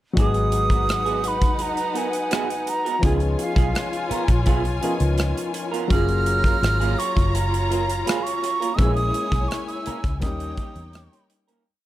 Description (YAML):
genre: lush 1970s-style soul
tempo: 84 BPM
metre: 4/4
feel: straight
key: G# minor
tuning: A4 = 440 Hz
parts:
  - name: warm concert grand piano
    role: accompaniment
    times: 0.1-11.7 s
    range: E#3 to A#4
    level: -29 LUFS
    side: left 3 dB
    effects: none
  - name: breathy jazz flute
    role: melody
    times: 0.2-11.3 s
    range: E#5 to E#6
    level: -26 LUFS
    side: right 4 dB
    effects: none
  - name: warm studio string section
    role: second line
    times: 0.2-11.6 s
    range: D#4 to A#5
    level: -29 LUFS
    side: left 3 dB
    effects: none
  - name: electric guitar through a small old amp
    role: riff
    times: 0.2-11.6 s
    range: A#3 to A#4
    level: -30 LUFS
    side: right 7 dB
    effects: lush chorus
  - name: vintage muted fingered electric bass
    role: bass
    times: 0.2-11.1 s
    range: F#1 to E2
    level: -24 LUFS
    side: equal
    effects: none
  - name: modern studio drum kit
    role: drums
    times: 0.2-11.6 s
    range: hi-hat, kick drum, rim click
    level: -24 LUFS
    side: equal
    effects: none
room: small room ambience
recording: none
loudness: -20 LUFS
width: side -14 dB against mid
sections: 0.2-11.7 verse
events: fade-out 8.8-11.7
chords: 0.2 G#m7; 3.0 C#7; 5.9 F#maj9; 8.8 A#m7b5; 10.2 D#7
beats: | 0.16 0.88 1.60 2.31 | 3.03 3.75 4.47 5.19 | 5.91 6.62 7.34 8.06 | 8.78 9.50 10.22 10.94